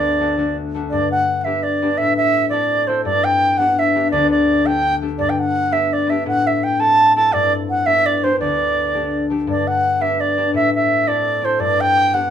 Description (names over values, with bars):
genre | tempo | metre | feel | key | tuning
celtic folk, Celtic jig | 112 BPM (dotted quarters) | 6/8 | straight | unclear | A4 = 440 Hz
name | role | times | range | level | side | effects
bright reedy baroque flute | melody | 0.0-12.3 s | C5 to A5 | -16 LUFS | right 2 dB | none
concert harp | accompaniment | 0.0-12.3 s | D2 to A4 | -21 LUFS | left 4 dB | none
room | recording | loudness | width
moderate studio reverb, RT60 0.6 s | minimal, uncompressed stereo recording | -15 LUFS | side -9 dB against mid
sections
0.9-9.5 A section; 9.5-12.3 A section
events
none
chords
0.0 D; 0.9 G; 2.0 Am; 3.1 G; 4.1 Dsus4; 5.2 G; 6.3 Am; 7.3 G; 8.4 Dsus4; 9.5 G; 10.5 Am; 11.6 G